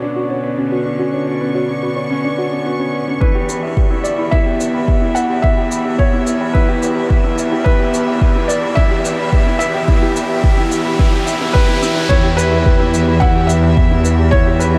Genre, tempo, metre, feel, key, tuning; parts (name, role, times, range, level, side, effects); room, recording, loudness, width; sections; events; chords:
piano and strings electronica; 108 BPM; 4/4; straight; E dorian; A4 = 438 Hz
clear studio string section; sustained chords; 0.0-14.8 s; B2 to C#6; -24 LUFS; equal; sidechain pumping, low-pass filter
warm concert grand piano; riff; 0.0-14.8 s; C#4 to B5; -23 LUFS; equal; tape echo
soft round pluck; arpeggios; 0.2-14.8 s; C#4 to G5; -29 LUFS; equal
felt-muted upright piano; melody; 3.2-14.8 s; B4 to F#5; -23 LUFS; equal; tape echo
clear chamber cello section; bass; 3.2-14.8 s; E2; -22 LUFS; equal; sidechain pumping, high-pass filter
electronic kick drum; drums; 3.2-14.4 s; -16 LUFS; equal
riser; sound effects; 7.3-12.1 s; -31 LUFS; equal
shaker; drums; 3.5-14.7 s; -34 LUFS; equal
wet huge ambient reverb, RT60 7.4 s; dreamy mix soaked in reverb; -15 LUFS; mono
0.0-3.2 A section; 3.2-12.1 B section; 12.1-14.8 C section
build-up 3.2-12.1; riser 7.3-12.1; drop 12.1-14.8
0.0 Bmadd9; 3.2 Em